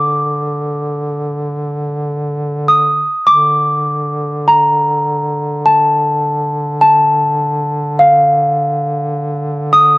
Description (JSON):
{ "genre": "caucasian folk, Caucasian lament", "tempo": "51 BPM", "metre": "3/4", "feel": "rubato", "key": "D phrygian", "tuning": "A4 = 440 Hz", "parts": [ { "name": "celesta", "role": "melody", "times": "0.0-10.0 s", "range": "F5 to Eb6", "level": "-12 LUFS", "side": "equal", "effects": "none" }, { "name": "warm duduk", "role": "drone", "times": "0.0-10.0 s", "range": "D3", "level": "-19 LUFS", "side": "equal", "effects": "cassette tape" } ], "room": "light reverb", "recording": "home recording on cassette", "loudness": "-12 LUFS", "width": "side -22 dB against mid", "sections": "0.0-3.3 A section; 3.3-10.0 B section", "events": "none", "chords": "none", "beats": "0.80 2.04 | 3.28 4.48 5.67 | 6.84 8.00 9.15" }